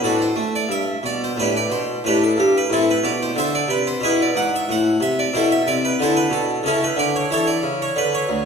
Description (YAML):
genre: classical, baroque-style suite movement for harpsichord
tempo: 91 BPM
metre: 3/4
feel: rubato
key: unclear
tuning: A4 = 438 Hz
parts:
  - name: harpsichord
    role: solo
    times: 0.0-8.5 s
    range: D2 to F#5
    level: -17 LUFS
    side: equal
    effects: none
room: wet recital hall reverb, RT60 1.7 s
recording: recorded in a church or concert hall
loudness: -17 LUFS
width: side -6 dB against mid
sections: 0.0-8.5 A section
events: none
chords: 0.0 D7/A; 0.7 G; 2.7 Am; 4.0 E/B; 4.7 Am; 6.7 A/C#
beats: 0.02 | 0.69 1.36 2.04 | 2.71 3.37 4.03 | 4.69 5.35 6.00 | 6.66 7.31 7.96